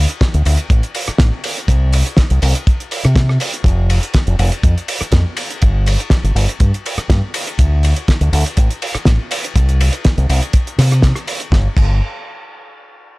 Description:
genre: nu-disco, nu disco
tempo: 122 BPM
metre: 4/4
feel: swing 53% on 16ths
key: unclear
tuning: A4 = 440 Hz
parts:
  - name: fingered electric bass with an envelope filter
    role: bass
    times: 0.0-12.0 s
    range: F1 to C3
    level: -13 LUFS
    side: equal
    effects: tube saturation
  - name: damped 70s drum kit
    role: drums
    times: 0.1-11.9 s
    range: crash cymbal, hi-hat, ride cymbal, rim click, snare drum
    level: -20 LUFS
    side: equal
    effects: none
  - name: kick drum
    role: drums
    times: 0.2-11.9 s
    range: none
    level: -12 LUFS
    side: equal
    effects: none
room: little or no reverb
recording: dry, gritty hardware recording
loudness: -12 LUFS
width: side -23 dB against mid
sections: 0.0-11.5 A section; 11.5-13.2 B section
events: drop 0.0-11.5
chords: none

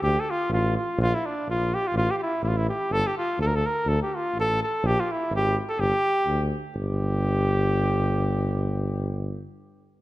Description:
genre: balkan folk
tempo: 125 BPM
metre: 2/4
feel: swing 55% on 16ths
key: G minor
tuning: A4 = 440 Hz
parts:
  - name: warm cornet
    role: melody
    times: 0.0-9.4 s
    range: D4 to Bb4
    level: -25 LUFS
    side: equal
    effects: none
  - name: mellow tuba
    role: bass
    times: 0.0-9.4 s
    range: G1 to D2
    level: -26 LUFS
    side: equal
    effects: none
room: moderate concert hall reverb, RT60 2.2 s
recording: dark, warm production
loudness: -22 LUFS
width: side -17 dB against mid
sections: 0.0-6.8 A section; 6.8-8.7 B section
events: none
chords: 0.0 D5; 1.0 Bb; 1.9 Fmaj9/A; 2.9 G5; 3.9 D5; 4.8 Gm6; 5.8 G5; 6.8 N.C.

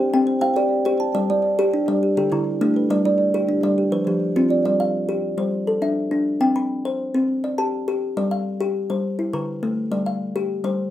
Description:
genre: southern african traditional, mbira-style interlocking cycle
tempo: 137 BPM (dotted quarters)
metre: 12/8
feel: straight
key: G mixolydian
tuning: A4 = 441 Hz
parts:
  - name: kalimba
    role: arpeggios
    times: 0.0-10.9 s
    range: D3 to B5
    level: -21 LUFS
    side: left 2 dB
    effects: none
  - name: kalimba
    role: arpeggios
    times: 0.0-4.9 s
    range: D3 to A5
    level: -21 LUFS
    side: right 3 dB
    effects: slapback echo
room: moderate small room reverb, RT60 0.6 s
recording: rough home demo mix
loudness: -19 LUFS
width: side -12 dB against mid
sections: 0.0-4.7 A section; 4.7-10.9 B section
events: none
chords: 0.0 C5; 1.1 G5; 2.0 D5; 2.9 G; 3.8 F5; 4.7 G5; 6.4 C5; 8.2 G5; 9.0 D5; 9.9 G5

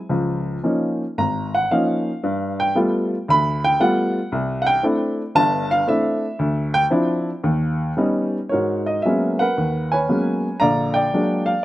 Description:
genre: solo jazz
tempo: 115 BPM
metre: 4/4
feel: swing 69% on 8ths, rubato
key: G# minor from 8.5 s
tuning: A4 = 440 Hz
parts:
  - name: warm baby grand piano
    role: solo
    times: 0.1-11.6 s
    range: G1 to B5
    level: -18 LUFS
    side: equal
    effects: none
room: little or no reverb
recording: recorded outdoors, with no room sound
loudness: -18 LUFS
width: side -15 dB against mid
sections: 0.0-8.5 A section; 8.5-11.6 B section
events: grand piano solo 0.0-8.5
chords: 0.1 Db69; 2.2 G9; 4.3 C69; 6.4 Dm9; 7.4 Eb7b13; 8.5 G#m11; 10.6 A#7b13

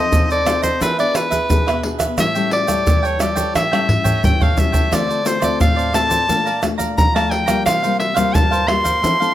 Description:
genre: samba and choro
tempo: 88 BPM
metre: 4/4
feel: straight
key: unclear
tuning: A4 = 438 Hz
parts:
  - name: edgy soprano saxophone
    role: melody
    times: 0.0-9.3 s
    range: B4 to C6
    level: -18 LUFS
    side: equal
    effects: none
  - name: cavaquinho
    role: accompaniment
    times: 0.0-9.3 s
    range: D4 to Bb5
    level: -24 LUFS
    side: right 5 dB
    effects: none
  - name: nylon-string guitar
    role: accompaniment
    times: 0.0-9.3 s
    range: G2 to A4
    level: -23 LUFS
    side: left 5 dB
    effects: none
  - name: egg shaker, surdo, pandeiro and tamborim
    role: percussion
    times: 0.1-9.3 s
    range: none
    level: -18 LUFS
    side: right 1 dB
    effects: none
room: light reverb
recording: close, detailed microphones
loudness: -14 LUFS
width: side -12 dB against mid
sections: 0.0-9.3 A section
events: drum fill 3.6-4.9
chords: 0.0 F7; 0.8 E7; 2.2 A7; 4.9 Dm7; 6.3 Bbmaj7; 7.7 C7sus4

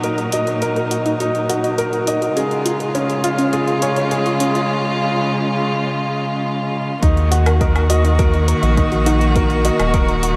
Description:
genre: piano and strings electronica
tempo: 103 BPM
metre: 4/4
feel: straight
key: Eb minor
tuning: A4 = 441 Hz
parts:
  - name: dark string quartet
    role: sustained chords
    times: 0.0-10.4 s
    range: Bb2 to Gb4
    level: -22 LUFS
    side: equal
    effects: sidechain pumping
  - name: soft round pluck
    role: arpeggios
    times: 0.0-10.3 s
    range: Db4 to Eb5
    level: -27 LUFS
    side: equal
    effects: chorus, sidechain pumping, delay
  - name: clear upright piano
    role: riff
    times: 0.0-10.4 s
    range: Db4 to Eb5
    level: -24 LUFS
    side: equal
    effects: delay
  - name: electronic hi-hat and woodblock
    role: drums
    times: 0.0-10.3 s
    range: none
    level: -31 LUFS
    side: equal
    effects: none
  - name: round analog bass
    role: bass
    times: 7.0-10.4 s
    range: Eb1 to Eb2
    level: -19 LUFS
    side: equal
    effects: sidechain pumping
  - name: electronic kick drum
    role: drums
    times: 7.0-10.1 s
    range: none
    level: -20 LUFS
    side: equal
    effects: none
room: wet huge ambient reverb, RT60 7.1 s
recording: dreamy mix soaked in reverb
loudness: -18 LUFS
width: mono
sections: 0.0-7.0 A section; 7.0-10.4 B section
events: build-up 0.0-7.0; filter sweep on synth arpeggio sound 0.0-7.0; drop 7.0-10.4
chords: 0.0 Ebm; 2.4 Db; 7.0 Ebm

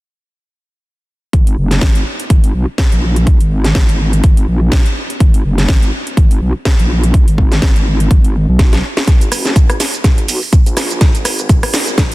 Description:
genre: bass house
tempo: 124 BPM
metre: 4/4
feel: swing 57% on 16ths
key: G# minor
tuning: A4 = 441 Hz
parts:
  - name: vowel-sweep wobble bass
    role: bass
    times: 1.3-12.1 s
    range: F#1 to B1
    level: -15 LUFS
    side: equal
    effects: chorus, tube saturation, sidechain pumping, high-pass filter
  - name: electronic kick drum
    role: drums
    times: 1.3-12.1 s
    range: none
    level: -10 LUFS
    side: equal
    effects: none
  - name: house drum kit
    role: drums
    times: 1.3-12.1 s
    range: hi-hat, rim click, shaker, snare drum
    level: -18 LUFS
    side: equal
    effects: none
room: little or no reverb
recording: dense, heavily limited modern master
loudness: -10 LUFS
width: side -19 dB against mid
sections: 1.3-9.1 A section; 9.1-12.1 B section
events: drum fill 8.6-9.1, 9.1-12.1; build-up 9.1-12.1; filter sweep 9.1-12.1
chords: none

